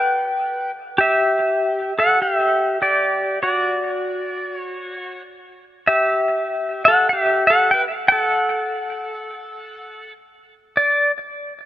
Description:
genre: hawaiian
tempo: 98 BPM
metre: 4/4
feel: swing 61% on 8ths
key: unclear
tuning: A4 = 435 Hz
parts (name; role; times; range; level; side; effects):
- pedal steel guitar; solo; 0.0-11.1 s; F#4 to G5; -17 LUFS; equal; digital delay
room: light reverb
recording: rough home demo mix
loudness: -16 LUFS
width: side -13 dB against mid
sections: 0.0-5.9 A section; 5.9-10.8 B section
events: none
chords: 0.0 Em (rootless); 1.0 A7sus4 (rootless); 3.4 N.C.; 5.9 A5; 8.3 N.C.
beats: 0.35 | 0.97 1.58 2.19 2.80 | 3.42 4.03 4.64 5.25 | 5.86 6.47 7.08 7.70 | 8.31 8.92 9.53 10.14 | 10.75

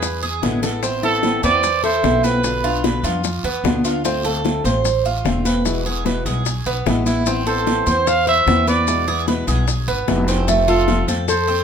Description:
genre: latin, Cuban son and guajira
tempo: 149 BPM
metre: 4/4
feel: straight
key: A harmonic minor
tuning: A4 = 442 Hz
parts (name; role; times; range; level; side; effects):
- clear trumpet; melody; 0.0-2.8, 7.5-11.6 s; G#4 to F5; -19 LUFS; right 4 dB; none
- nylon-string guitar; second line; 0.0-2.8, 7.5-11.6 s; E4 to C5; -24 LUFS; left 5 dB; none
- fingerpicked steel-string acoustic guitar; accompaniment; 0.0-11.3 s; B2 to F4; -24 LUFS; left 5 dB; none
- Cuban tres; arpeggios; 0.0-11.6 s; A3 to C5; -22 LUFS; right 5 dB; none
- upright bass; bass; 0.0-11.6 s; E1 to F2; -23 LUFS; equal; none
- bongos; percussion; 0.0-11.5 s; none; -25 LUFS; left 5 dB; none
- congas; percussion; 0.0-11.6 s; none; -24 LUFS; equal; none
- guiro; percussion; 0.0-11.6 s; none; -32 LUFS; right 4 dB; none
- maracas; percussion; 0.0-11.6 s; none; -30 LUFS; left 7 dB; none
room: moderate studio ambience, RT60 0.5 s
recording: minimal, uncompressed stereo recording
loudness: -16 LUFS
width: side -7 dB against mid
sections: 0.8-11.6 A section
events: drum fill 0.4-0.8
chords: 0.0 E7; 0.8 Amadd9; 2.4 Bdim; 4.0 Dm7; 5.7 E; 7.3 Amadd9; 8.9 E; 10.5 F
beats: 0.03 0.43 | 0.83 1.23 1.63 2.04 | 2.44 2.84 3.24 3.64 | 4.05 4.45 4.85 5.25 | 5.66 6.06 6.46 6.86 | 7.26 7.67 8.07 8.47 | 8.87 9.28 9.68 10.08 | 10.48 10.88 11.28

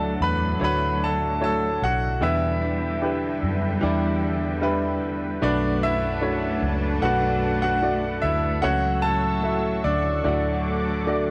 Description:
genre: pop ballad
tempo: 75 BPM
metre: 4/4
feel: straight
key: D major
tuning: A4 = 440 Hz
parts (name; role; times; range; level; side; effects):
- bright grand piano; melody; 0.0-11.3 s; D4 to B5; -28 LUFS; equal; cassette tape
- rich chamber cello section; second line; 0.0-11.3 s; D2 to D4; -32 LUFS; equal; cassette tape
- warm baby grand piano; accompaniment; 0.0-11.3 s; A2 to E5; -30 LUFS; equal; cassette tape
- warm analog pad; sustained chords; 0.0-11.3 s; D4 to E6; -37 LUFS; equal; chorus, cassette tape
- direct-recorded clean electric guitar; arpeggios; 0.0-11.3 s; E2 to F#4; -36 LUFS; equal; none
- vintage muted fingered electric bass; bass; 0.0-11.3 s; B1 to F#2; -30 LUFS; equal; none
room: light reverb, small room ambience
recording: home recording on cassette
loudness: -23 LUFS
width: mono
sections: 0.0-11.3 A section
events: none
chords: 0.0 D; 2.2 Em7; 5.4 Bm7; 8.6 F#m7/C#; 10.2 Dmaj7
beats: 0.61 1.42 | 2.22 3.03 3.83 4.63 | 5.42 6.22 7.02 7.83 | 8.63 9.44 10.25 11.07

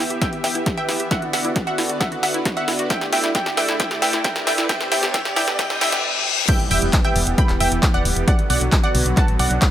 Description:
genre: uplifting trance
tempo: 134 BPM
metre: 4/4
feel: straight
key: unclear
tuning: A4 = 442 Hz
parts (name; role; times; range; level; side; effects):
- wide unison pluck; melody; 0.0-9.6 s; D5 to B5; -23 LUFS; right 1 dB; sidechain pumping, tape echo
- filtered supersaw swell; sustained chords; 0.0-9.7 s; D3 to E5; -26 LUFS; right 1 dB; sidechain pumping
- wide unison pluck; arpeggios; 0.0-6.0 s; E4 to B4; -29 LUFS; left 1 dB; sidechain pumping, tape echo
- riser, reverse cymbal and impact; sound effects; 1.7-8.3 s; none; -27 LUFS; left 2 dB; none
- punchy analog drum machine; drums; 0.1-9.7 s; crash cymbal, handclaps, hi-hat, snare drum; -24 LUFS; equal; high-pass filter on hats, high-pass filter on snare, high-pass filter on cymbals
- electronic kick drum; drums; 0.2-9.7 s; none; -20 LUFS; equal; none
- solid FM bass; bass; 6.7-9.6 s; D1 to B1; -21 LUFS; equal; sidechain pumping
room: light reverb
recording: high-pass filter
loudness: -17 LUFS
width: side -11 dB against mid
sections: 0.0-6.5 A section; 6.5-9.7 B section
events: build-up 0.0-6.5; drum fill 0.0-6.0; filter sweep on synth arpeggio sound 0.0-6.5; filter sweep 0.0-6.5; reverse cymbal 5.6-6.5; drop 6.5-9.7; impact 6.5-8.3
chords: 0.0 Em; 1.1 Bm; 2.9 Asus4; 4.7 G; 8.3 Bm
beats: 0.22 0.67 | 1.11 1.56 2.01 2.46 | 2.90 3.35 3.80 4.25 | 4.70 5.14 5.59 6.04 | 6.49 6.93 7.38 7.83 | 8.28 8.72 9.17 9.62

